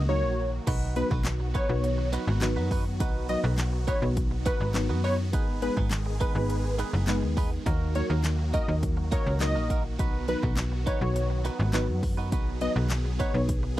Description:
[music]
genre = dance-pop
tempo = 103 BPM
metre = 4/4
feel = straight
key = B major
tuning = A4 = 439 Hz
[part]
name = supersaw chords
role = sustained chords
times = 0.0-13.8 s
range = D#3 to G#4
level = -38 LUFS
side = equal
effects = phaser, sidechain pumping
[part]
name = slap-like FM bass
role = bass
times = 0.0-13.8 s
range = F#1 to F#2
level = -28 LUFS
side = equal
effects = sidechain pumping
[part]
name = plucky unison lead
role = melody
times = 0.1-13.4 s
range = B4 to D#5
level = -31 LUFS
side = equal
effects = sidechain pumping, slapback echo
[part]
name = soft round pluck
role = accompaniment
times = 0.1-13.8 s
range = F#3 to B4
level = -34 LUFS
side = left 2 dB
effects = chorus, sidechain pumping
[part]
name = direct-recorded clean electric guitar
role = riff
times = 0.7-13.8 s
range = A#3 to B4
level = -35 LUFS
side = right 6 dB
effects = wide subtle chorus
[part]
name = pop drum kit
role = drums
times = 0.7-13.6 s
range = crash cymbal, handclaps, hi-hat, kick drum, snare drum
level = -29 LUFS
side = equal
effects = none
[part]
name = group handclap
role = percussion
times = 1.3-13.0 s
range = none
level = -43 LUFS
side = left 6 dB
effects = none
[sound]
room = little or no reverb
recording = dry, close 1970s-style studio recording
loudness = -25 LUFS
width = side -15 dB against mid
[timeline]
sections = 0.7-13.8 A section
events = break 0.0-0.7; drop 0.7-13.8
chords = 0.0 D#m; 0.7 B; 5.3 G#m; 7.7 D#m; 10.0 B

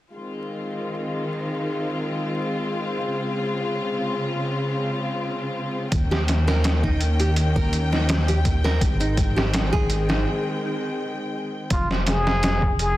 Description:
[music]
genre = trip hop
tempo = 83 BPM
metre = 4/4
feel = swing 53% on 16ths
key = F minor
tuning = A4 = 437 Hz
[part]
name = warm studio string section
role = sustained chords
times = 0.1-11.7 s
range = Db3 to G5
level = -26 LUFS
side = left 1 dB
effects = none
[part]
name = dark detuned saw bass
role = bass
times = 5.9-13.0 s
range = F1 to Eb2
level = -22 LUFS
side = equal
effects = none
[part]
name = trip hop sampler-style drum kit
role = drums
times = 5.9-13.0 s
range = hi-hat, kick drum, snare drum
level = -23 LUFS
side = equal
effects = overdrive
[part]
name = nylon-string guitar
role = arpeggios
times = 6.1-10.3 s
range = Eb4 to Bb4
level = -29 LUFS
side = right 2 dB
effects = tape echo
[part]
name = trumpet with plunger mute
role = melody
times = 11.7-13.0 s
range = F4 to Ab4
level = -24 LUFS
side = left 1 dB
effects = tape echo
[sound]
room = light reverb, studio ambience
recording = dense, heavily limited modern master, vinyl crackle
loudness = -21 LUFS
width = side -15 dB against mid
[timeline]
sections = 0.1-11.7 A section; 11.7-13.0 B section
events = break 10.3-11.7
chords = 0.1 Fm7; 3.0 Dbmaj7; 5.9 Eb7; 8.8 Abmaj7; 11.7 Fm

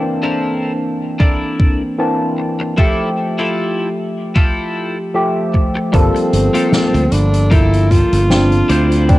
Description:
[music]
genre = vaporwave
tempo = 76 BPM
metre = 4/4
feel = swing 55% on 16ths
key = G dorian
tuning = A4 = 439 Hz
[part]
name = barky tine electric piano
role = accompaniment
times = 0.0-9.2 s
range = E3 to A5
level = -18 LUFS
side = equal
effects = overdrive, analog chorus, cassette tape, tape echo
[part]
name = twelve-string electric guitar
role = riff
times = 0.0-9.2 s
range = Bb3 to D5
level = -22 LUFS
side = left 2 dB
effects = lush chorus, low-pass filter, cassette tape, tape echo
[part]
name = electronic kick drum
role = drums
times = 1.2-9.2 s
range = none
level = -13 LUFS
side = equal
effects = cassette tape
[part]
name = breathy tenor saxophone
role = melody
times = 5.9-9.2 s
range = C4 to F4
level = -18 LUFS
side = equal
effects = cassette tape, tape echo
[part]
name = modern bright fingered electric bass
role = bass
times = 5.9-9.2 s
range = G1 to D2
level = -14 LUFS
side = equal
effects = none
[part]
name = soft-mallet drum kit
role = drums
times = 5.9-9.2 s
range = hi-hat, snare drum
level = -22 LUFS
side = left 1 dB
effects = cassette tape
[sound]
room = small room ambience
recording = home recording on cassette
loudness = -13 LUFS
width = side -17 dB against mid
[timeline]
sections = 0.0-5.9 A section; 5.9-9.2 B section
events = none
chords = 0.0 C13; 2.8 Fmaj9; 5.9 Gm9

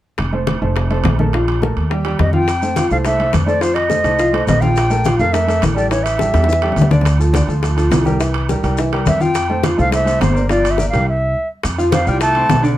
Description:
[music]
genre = Afro-Cuban jazz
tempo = 209 BPM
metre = 4/4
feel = straight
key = F major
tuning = A4 = 437 Hz
[part]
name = upright bass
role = bass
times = 0.2-12.8 s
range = F1 to F2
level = -17 LUFS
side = equal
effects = none
[part]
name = bongos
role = percussion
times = 0.2-12.6 s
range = none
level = -24 LUFS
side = left 6 dB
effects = none
[part]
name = congas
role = percussion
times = 0.2-12.6 s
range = none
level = -22 LUFS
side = left 2 dB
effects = none
[part]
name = timbales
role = percussion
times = 0.2-12.6 s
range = none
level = -26 LUFS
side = right 6 dB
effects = none
[part]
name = clear baby grand piano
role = accompaniment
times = 0.3-12.8 s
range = D3 to F6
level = -20 LUFS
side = equal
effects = none
[part]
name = concert flute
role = melody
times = 2.2-6.9, 9.1-12.6 s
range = C5 to A5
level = -18 LUFS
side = equal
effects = none
[part]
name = maracas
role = percussion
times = 2.5-12.8 s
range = none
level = -34 LUFS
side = left 4 dB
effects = none
[part]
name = clear tenor saxophone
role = second line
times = 11.9-12.6 s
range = F3 to A3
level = -22 LUFS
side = right 5 dB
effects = none
[sound]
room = light reverb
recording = dark, warm production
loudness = -13 LUFS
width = side -14 dB against mid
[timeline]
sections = 0.2-2.5 A section; 2.5-11.6 B section; 11.6-12.8 C section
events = drum fill 6.3-7.1; stop 11.1-11.6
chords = 0.2 F; 1.3 Bb5; 1.9 Ebadd9; 2.5 Fmaj7; 3.6 F7; 4.8 Bb5; 5.9 A5; 7.1 Dm7; 8.2 C7; 9.4 Fmaj7; 10.5 Gm7; 11.1 C; 11.6 F

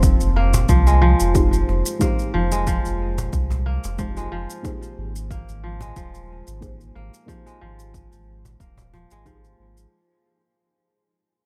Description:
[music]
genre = organic downtempo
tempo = 91 BPM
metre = 4/4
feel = swing 54% on 16ths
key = unclear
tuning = A4 = 440 Hz
[part]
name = deep mellow chord stab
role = accompaniment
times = 0.0-9.9 s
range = Ab3 to C5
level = -32 LUFS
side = equal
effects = chorus, phaser, sidechain pumping, tape echo
[part]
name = kora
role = arpeggios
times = 0.0-10.5 s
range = F3 to F4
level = -27 LUFS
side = equal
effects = low-pass filter, tape echo
[part]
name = warm sub bass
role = bass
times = 0.0-9.9 s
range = Eb1 to C2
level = -23 LUFS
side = equal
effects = tube saturation
[part]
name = electronic kick drum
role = drums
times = 0.0-9.4 s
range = none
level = -24 LUFS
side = equal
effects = overdrive
[part]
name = shaker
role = drums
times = 0.0-9.9 s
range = none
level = -35 LUFS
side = equal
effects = overdrive
[part]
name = cajon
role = percussion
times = 0.5-9.2 s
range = none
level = -28 LUFS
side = equal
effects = none
[sound]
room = little or no reverb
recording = none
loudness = -20 LUFS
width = mono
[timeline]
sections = 0.0-9.9 A section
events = fade-out 0.0-9.9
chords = 0.0 Fm9; 4.6 Abmaj9

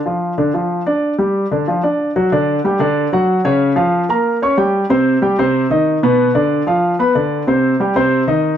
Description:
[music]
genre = jazz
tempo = 186 BPM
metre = 4/4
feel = straight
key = unclear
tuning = A4 = 440 Hz
[part]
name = warm concert grand piano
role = solo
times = 0.1-8.5 s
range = B2 to Db6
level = -13 LUFS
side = equal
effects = none
[sound]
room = moderate large studio reverb, RT60 1.2 s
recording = none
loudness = -13 LUFS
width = side -9 dB against mid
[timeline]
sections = 0.0-2.3 A section; 2.3-8.6 B section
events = none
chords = 0.0 G5; 3.6 Bbm; 4.3 Gdim; 4.9 Cmmaj7; 6.2 Bdim; 7.5 Cm

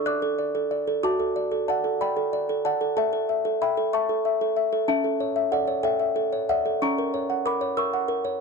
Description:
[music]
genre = classical, lullaby for music box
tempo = 62 BPM (dotted quarters)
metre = 6/8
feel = rubato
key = unclear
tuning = A4 = 442 Hz
[part]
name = music box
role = solo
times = 0.0-8.4 s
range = C#4 to F#6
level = -22 LUFS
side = equal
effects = none
[sound]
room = light reverb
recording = dry, close 1970s-style studio recording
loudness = -22 LUFS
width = side -4 dB against mid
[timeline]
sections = 0.0-8.4 A section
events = none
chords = 0.0 D; 1.0 D/F#; 3.0 A; 4.9 A/C#; 6.8 F#7/C#

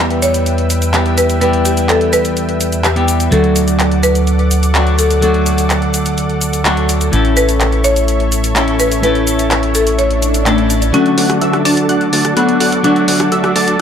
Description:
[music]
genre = EDM, festival progressive house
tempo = 126 BPM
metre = 4/4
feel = straight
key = D major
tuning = A4 = 440 Hz
[part]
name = buzzing marimba with medium hard mallets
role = melody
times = 0.0-13.8 s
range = A3 to C#5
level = -17 LUFS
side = left 2 dB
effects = ping-pong delay
[part]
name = clean electric guitar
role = accompaniment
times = 0.0-13.8 s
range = A2 to A4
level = -17 LUFS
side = equal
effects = none
[part]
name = lush unison pad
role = sustained chords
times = 0.0-13.8 s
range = A4 to E6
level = -22 LUFS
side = equal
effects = chorus
[part]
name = fat analog bass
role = bass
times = 0.0-13.8 s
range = A1 to E2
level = -17 LUFS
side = equal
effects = high-pass filter
[part]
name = big-room dance drum kit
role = drums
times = 0.1-13.8 s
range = cabasa, handclaps, hi-hat, rim click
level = -19 LUFS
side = equal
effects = small room ambience
[part]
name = swell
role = sound effects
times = 10.2-10.9 s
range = none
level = -21 LUFS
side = right 3 dB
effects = none
[part]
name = plucky unison lead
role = arpeggios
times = 10.9-13.8 s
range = E6 to A6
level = -20 LUFS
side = right 1 dB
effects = ping-pong delay
[part]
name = supersaw chords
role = riff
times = 10.9-13.8 s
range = D4 to A5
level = -18 LUFS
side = right 1 dB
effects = low-pass filter, ping-pong delay
[sound]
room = light reverb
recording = dark, warm production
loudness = -11 LUFS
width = side -8 dB against mid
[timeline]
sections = 0.0-10.9 A section; 10.9-13.8 B section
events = swell 10.2-10.9; build-up 10.9-13.8; filter sweep on supersaw synth 10.9-13.8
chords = 0.0 Em; 3.3 D; 7.1 A; 10.9 D

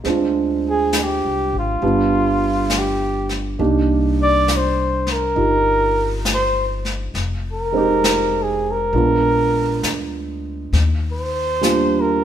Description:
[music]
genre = jazz ballad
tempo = 67 BPM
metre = 4/4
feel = swing 67% on 8ths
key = unclear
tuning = A4 = 438 Hz
[part]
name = warm grand piano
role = accompaniment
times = 0.0-12.2 s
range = G3 to G4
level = -20 LUFS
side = right 4 dB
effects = none
[part]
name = jazz brush drum kit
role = drums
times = 0.0-12.2 s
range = brushed snare drum, hi-hat, snare drum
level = -25 LUFS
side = left 2 dB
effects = none
[part]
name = upright bass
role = bass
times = 0.1-12.2 s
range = F1 to Eb2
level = -23 LUFS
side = left 1 dB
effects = none
[part]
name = warm flugelhorn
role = melody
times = 0.7-12.2 s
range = F4 to D5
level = -19 LUFS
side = equal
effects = none
[sound]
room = wet stone room reverb, RT60 1.3 s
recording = band playing live in one room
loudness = -16 LUFS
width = side -10 dB against mid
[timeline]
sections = 0.0-12.2 A section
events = flugelhorn solo 0.0-12.2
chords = 0.0 Dm7b5; 1.8 G7; 3.6 Cm9; 7.1 Fm7; 8.9 Bb7b9; 10.7 Ebmaj9

